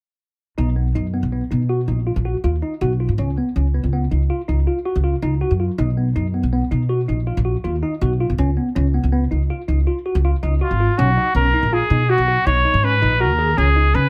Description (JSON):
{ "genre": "progressive instrumental, progressive", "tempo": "162 BPM", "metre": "7/4", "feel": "straight", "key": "B lydian", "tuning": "A4 = 441 Hz", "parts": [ { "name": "tine electric piano", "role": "arpeggios", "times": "0.6-14.1 s", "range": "B3 to G#4", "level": "-26 LUFS", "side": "equal", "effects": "phaser" }, { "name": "upright bass", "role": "bass", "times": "0.6-14.1 s", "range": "G#1 to C#3", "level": "-21 LUFS", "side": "equal", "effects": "none" }, { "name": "clear trumpet", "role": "melody", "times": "10.6-14.1 s", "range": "E#4 to C#5", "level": "-20 LUFS", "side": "equal", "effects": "none" } ], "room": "light reverb", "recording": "none", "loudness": "-19 LUFS", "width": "mono", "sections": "0.6-11.0 A section; 11.0-14.1 B section", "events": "none", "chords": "0.6 Bmaj7; 3.2 C#7; 5.8 Bmaj7; 8.4 C#7; 11.0 Bmaj7; 13.6 C#7(no3)", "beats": "| 0.58 0.95 1.33 1.70 2.07 2.44 2.81 | 3.19 3.56 3.93 4.30 4.67 5.04 5.42 | 5.79 6.16 6.53 6.90 7.27 7.64 8.02 | 8.39 8.76 9.13 9.50 9.87 10.24 10.61 | 10.98 11.35 11.72 12.09 12.46 12.83 13.20 | 13.57 13.94" }